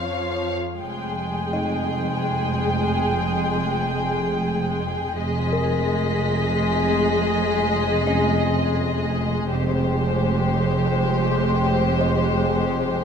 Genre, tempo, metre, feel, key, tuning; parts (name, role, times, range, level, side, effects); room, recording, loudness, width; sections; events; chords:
cinematic, suspense film score; free time; F minor; A4 = 440 Hz
muted symphonic violin section; melody; 0.0-13.0 s; C5 to G5; -28 LUFS; left 2 dB
muted symphonic violin section; second line; 0.0-13.0 s; G4 to Db5; -27 LUFS; left 1 dB
muted symphonic viola section; accompaniment; 0.0-13.0 s; F3 to Ab3; -26 LUFS; left 2 dB
muted symphonic cello section; bass; 0.0-13.0 s; F2; -26 LUFS; right 2 dB
music box; texture; 0.0-13.0 s; C4 to C6; -32 LUFS; left 3 dB
muted symphonic double bass section; bass; 0.8-13.0 s; F1; -27 LUFS; right 3 dB
muted symphonic violin section; texture; 5.2-9.1 s; Bb6 to B6; -33 LUFS; left 2 dB
moderate scoring stage reverb, RT60 2.0 s; minimal, uncompressed stereo recording; -20 LUFS; side -7 dB against mid
0.8-13.0 A section
0.0 Db/F; 0.8 Fmadd9